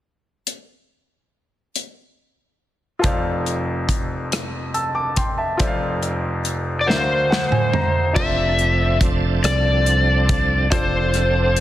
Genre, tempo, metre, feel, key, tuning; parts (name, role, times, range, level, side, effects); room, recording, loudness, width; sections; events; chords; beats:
slow gospel; 47 BPM (dotted quarters); 6/8; straight; F major; A4 = 441 Hz
modern studio drum kit; drums; 0.5-11.6 s; crash cymbal, hi-hat, kick drum, rim click, snare drum, toms; -22 LUFS; equal
bright grand piano; accompaniment; 3.0-11.6 s; F1 to E6; -24 LUFS; left 1 dB
overdriven slide guitar; melody; 6.8-11.6 s; C5 to E5; -20 LUFS; left 2 dB
bright tonewheel organ; sustained chords; 8.1-11.6 s; F3 to A4; -25 LUFS; right 4 dB; fast rotary speaker, overdrive, chorus vibrato
fingered electric bass; bass; 8.2-11.6 s; F1 to C2; -20 LUFS; equal
light reverb, small room ambience; dense, heavily limited modern master; -18 LUFS; side -13 dB against mid
0.5-3.0 A section; 3.0-8.2 B section; 8.2-11.6 C section
drum fill 6.9-8.2; grand piano fill 6.9-8.2
0.5 N.C.; 3.0 F6; 6.9 D7alt; 8.2 F6
| 0.47 1.76 | 3.04 4.32 | 5.61 6.89 | 8.17 9.45 | 10.72